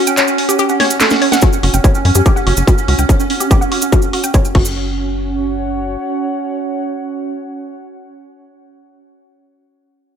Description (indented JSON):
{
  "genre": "psychedelic trance",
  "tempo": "144 BPM",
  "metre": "4/4",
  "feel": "straight",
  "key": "unclear",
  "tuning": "A4 = 440 Hz",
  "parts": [
    { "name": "pulsing gated texture", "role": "sustained chords", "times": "0.0-4.5 s", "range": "C#4", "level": "-20 LUFS", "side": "right 5 dB", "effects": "chorus, built-in reverb, sidechain pumping" },
    { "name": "woody wave-folded pluck", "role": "riff", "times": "0.0-4.9 s", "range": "F#4 to G5", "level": "-18 LUFS", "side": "moving between left 6 dB and right 2 dB", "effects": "chorus, auto-pan, sidechain pumping, dub echo" },
    { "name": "warbly tape-like pad", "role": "texture", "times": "0.0-8.9 s", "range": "C#4 to F#5", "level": "-22 LUFS", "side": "right 3 dB", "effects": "chorus, built-in reverb, sidechain pumping" },
    { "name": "techno drum kit", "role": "drums", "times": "0.1-4.6 s", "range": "crash cymbal, handclaps, hi-hat, snare drum", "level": "-18 LUFS", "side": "left 1 dB", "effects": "none" },
    { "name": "cabasa", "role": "percussion", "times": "0.1-4.7 s", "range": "none", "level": "-22 LUFS", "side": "right 4 dB", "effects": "none" },
    { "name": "electronic kick drum", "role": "drums", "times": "1.4-4.6 s", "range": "none", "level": "-12 LUFS", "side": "equal", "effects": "distortion" },
    { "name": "tight sequencer bass", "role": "bass", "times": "1.6-6.0 s", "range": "F#1 to F#2", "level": "-16 LUFS", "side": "equal", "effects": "none" }
  ],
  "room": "light reverb",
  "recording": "none",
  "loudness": "-12 LUFS",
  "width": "side -8 dB against mid",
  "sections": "0.0-1.4 A section; 1.4-4.8 B section; 4.8-8.1 C section",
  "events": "break 0.0-1.4; drop 0.0-1.4; drum fill 0.8-1.4",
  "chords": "0.0 F#5"
}